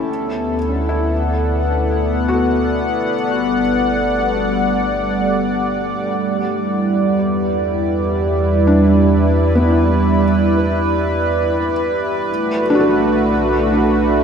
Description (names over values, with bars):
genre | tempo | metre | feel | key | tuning
ambient | 59 BPM | 3/4 | straight | unclear | A4 = 440 Hz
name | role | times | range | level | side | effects
warm analog pad | sustained chords | 0.0-14.2 s | G3 to F#5 | -16 LUFS | right 1 dB | chorus
felt-muted upright piano | arpeggios | 0.0-14.2 s | A3 to A4 | -22 LUFS | left 1 dB | diffuse ambient delay
round analog bass | bass | 0.0-14.2 s | B1 to E2 | -21 LUFS | equal | none
overtone-sweeping drone | drone | 0.0-6.3, 13.1-14.2 s | D3 to A3 | -27 LUFS | left 1 dB | chorus, built-in reverb, phaser
room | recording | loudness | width
wet huge ambient reverb, RT60 8.8 s | none | -14 LUFS | side -7 dB against mid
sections
0.0-6.2 A section; 6.2-14.2 B section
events
fade-in on analog synth pad 0.0-6.2; fade-out on felt piano 0.0-6.2; fade-out on analog synth bass 0.0-6.2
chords
0.1 D69; 3.1 Gmaj9; 6.2 Em7; 12.3 Bm7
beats
| 0.09 1.10 2.12 | 3.14 4.15 5.17 | 6.19 7.21 8.22 | 9.24 10.26 11.27 | 12.29 13.31